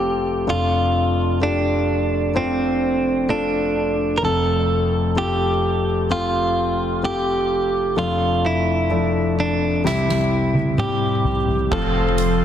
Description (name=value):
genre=pop ballad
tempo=64 BPM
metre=4/4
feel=straight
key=F major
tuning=A4 = 440 Hz
part: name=direct-recorded clean electric guitar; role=melody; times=0.0-12.4 s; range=C4 to Bb4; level=-21 LUFS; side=right 2 dB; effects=spring reverb, ping-pong delay
part: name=warm concert grand piano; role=accompaniment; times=0.0-12.4 s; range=F1 to C5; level=-21 LUFS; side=left 2 dB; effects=none
part: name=soft-mallet drum kit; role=drums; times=9.9-12.4 s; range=crash cymbal, hi-hat, kick drum, snare drum, toms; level=-23 LUFS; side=equal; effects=none
part: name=lush unison pad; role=sustained chords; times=11.7-12.4 s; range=F3 to C6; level=-24 LUFS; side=right 4 dB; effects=chorus
part: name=warm sub bass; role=bass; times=11.7-12.4 s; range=F1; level=-23 LUFS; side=right 1 dB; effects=none
room=light reverb, small room ambience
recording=dense, heavily limited modern master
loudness=-18 LUFS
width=side -9 dB against mid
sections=0.0-11.7 A section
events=drum fill 9.8-11.7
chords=0.5 Dm/F; 4.2 F; 8.0 Dm/F; 9.8 C; 11.7 F